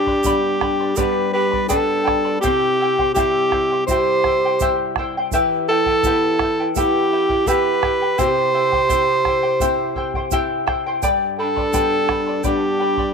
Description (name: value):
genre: andean folk, Andean ensemble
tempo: 84 BPM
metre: 4/4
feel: straight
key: unclear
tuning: A4 = 440 Hz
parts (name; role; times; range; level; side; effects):
- clear alto saxophone; melody; 0.0-13.1 s; G4 to C5; -18 LUFS; right 1 dB; none
- breathy mellow large pan pipes; second line; 0.0-13.1 s; C4 to G4; -24 LUFS; right 6 dB; none
- charango; accompaniment; 0.0-13.1 s; E4 to B5; -22 LUFS; left 2 dB; none
- flamenco guitar; accompaniment; 0.0-13.1 s; G2 to G4; -28 LUFS; left 14 dB; none
- bombo; percussion; 0.1-13.1 s; none; -26 LUFS; right 3 dB; none
- egg shaker; percussion; 0.2-12.6 s; none; -30 LUFS; right 19 dB; none
room: moderate spring reverb, RT60 2.4 s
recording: 1960s-style stereo with parts hard left and right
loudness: -16 LUFS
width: side -5 dB against mid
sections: 0.0-13.1 A section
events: speeding up 0.0-13.1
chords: 0.0 G; 2.4 C; 5.3 Em; 8.2 C; 11.0 G